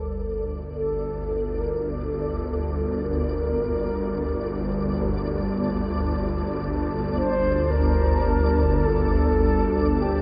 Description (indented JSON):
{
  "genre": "dark ambient drone",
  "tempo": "free time",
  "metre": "none",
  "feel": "none",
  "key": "G minor",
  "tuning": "A4 = 441 Hz",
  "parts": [
    { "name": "mellow horn-like synth lead", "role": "melody", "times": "0.0-10.2 s", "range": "G4 to C5", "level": "-30 LUFS", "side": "equal", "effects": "chorus, analog delay" },
    { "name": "deep dark ambient pad", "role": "sustained chords", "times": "0.0-10.2 s", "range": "G3 to A5", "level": "-33 LUFS", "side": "equal", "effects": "chorus, built-in reverb" },
    { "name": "swarming drone", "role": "drone", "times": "0.0-10.2 s", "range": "G1 to D2", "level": "-27 LUFS", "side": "equal", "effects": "built-in reverb, subtle chorus" },
    { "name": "flickering grainy texture", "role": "texture", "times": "0.0-10.2 s", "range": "D5", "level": "-40 LUFS", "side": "equal", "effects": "built-in reverb, ensemble chorus" }
  ],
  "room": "wet huge ambient reverb, RT60 7.5 s",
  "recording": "dreamy mix soaked in reverb, nothing above 7.8 kHz",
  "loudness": "-24 LUFS",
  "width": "mono",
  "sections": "0.0-10.2 A section",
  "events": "fade-in on ambient pad 0.0-10.2; fade-in on synth texture 0.0-10.2; filter sweep on synth drone 0.0-10.2",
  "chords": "0.0 Gmadd9"
}